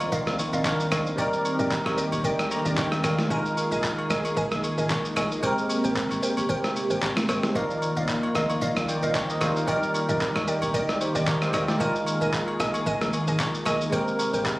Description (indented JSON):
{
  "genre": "amapiano",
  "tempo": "113 BPM",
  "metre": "4/4",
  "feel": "swing 55% on 16ths",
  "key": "unclear",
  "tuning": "A4 = 441 Hz",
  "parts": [
    { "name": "barky tine electric piano", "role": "accompaniment", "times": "0.0-14.6 s", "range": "F3 to Bb5", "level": "-28 LUFS", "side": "equal", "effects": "ensemble chorus" },
    { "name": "lush unison pad", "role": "sustained chords", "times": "0.0-14.6 s", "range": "C3 to Ab4", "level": "-30 LUFS", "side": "equal", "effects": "chorus, phaser, sidechain pumping" },
    { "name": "deep log drum bass", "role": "bass", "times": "0.0-14.6 s", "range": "F1 to F2", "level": "-35 LUFS", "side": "equal", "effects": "none" },
    { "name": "lo-fi sampler-style drum kit", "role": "drums", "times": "0.0-14.6 s", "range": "handclaps, kick drum, rim click, shaker, snare drum", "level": "-29 LUFS", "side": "equal", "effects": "none" },
    { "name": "agogo bells and woodblock", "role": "percussion", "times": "0.0-14.6 s", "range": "none", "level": "-35 LUFS", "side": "left 1 dB", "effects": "none" },
    { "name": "glassy wavetable pluck", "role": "stabs", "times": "0.1-14.5 s", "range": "Bb4 to Ab5", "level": "-30 LUFS", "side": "right 1 dB", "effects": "chorus, tape echo" }
  ],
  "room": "light reverb, digital ambience",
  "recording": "recorded on a phone in the room, studio reverb, compression",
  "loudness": "-23 LUFS",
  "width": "side -19 dB against mid",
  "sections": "0.0-14.6 A section",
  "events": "tine electric piano fill 2.2-3.3",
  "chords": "0.0 Cm11; 1.2 F13sus4; 3.3 Bb7sus4; 5.4 Abmaj9; 7.6 Cm11; 11.8 Bb7sus4; 13.9 Abmaj9",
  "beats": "0.12 0.65 | 1.19 1.72 2.25 2.78 | 3.31 3.84 4.37 4.90 | 5.43 5.96 6.49 7.03 | 7.56 8.09 8.62 9.15 | 9.68 10.21 10.74 11.27 | 11.80 12.34 12.87 13.40 | 13.93 14.46"
}